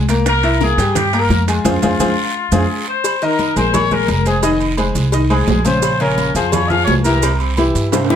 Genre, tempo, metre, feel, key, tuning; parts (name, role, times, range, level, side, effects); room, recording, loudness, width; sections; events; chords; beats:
latin, salsa; 172 BPM; 4/4; straight; F minor; A4 = 443 Hz
bright concert grand piano; accompaniment; 0.0-8.2 s; C3 to E6; -18 LUFS; left 2 dB
upright bass; bass; 0.0-8.2 s; F1 to G2; -18 LUFS; right 1 dB
bongos and cowbell; percussion; 0.1-8.2 s; -24 LUFS; left 5 dB
congas; percussion; 0.1-8.2 s; -23 LUFS; left 2 dB
guiro; percussion; 0.1-8.2 s; -30 LUFS; right 7 dB
maracas; percussion; 0.1-8.2 s; -28 LUFS; right 10 dB
timbales and agogo bells; percussion; 0.1-8.2 s; -24 LUFS; right 9 dB
warm trumpet section; melody; 0.3-8.2 s; F4 to F5; -19 LUFS; left 3 dB
light reverb; -13 LUFS; side -9 dB against mid
0.0-3.0 A section; 3.0-8.2 B section
band accent 1.7-3.0; drum fill 2.3-3.0, 7.9
0.3 C7; 1.7 Fm; 3.0 Ebsus4; 4.4 Fm7; 5.8 Bbm7; 7.2 C
| 0.26 0.61 0.95 1.30 | 1.65 2.00 2.35 2.69 | 3.04 3.39 3.74 4.09 | 4.43 4.78 5.13 5.48 | 5.83 6.18 6.53 6.88 | 7.22 7.57 7.92